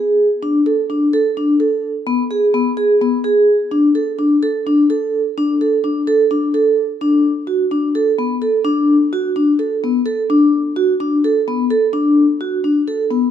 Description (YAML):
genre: contemporary instrumental, contemporary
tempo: 255 BPM (eighths)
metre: 7/8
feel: straight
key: unclear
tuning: A4 = 440 Hz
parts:
  - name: vibraphone with medium mallets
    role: solo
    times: 0.0-13.3 s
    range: B3 to A4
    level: -14 LUFS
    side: equal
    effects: none
room: moderate recital hall reverb, RT60 1.7 s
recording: close, detailed microphones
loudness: -14 LUFS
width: side -9 dB against mid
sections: 0.0-7.0 A section; 7.0-13.3 B section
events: none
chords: none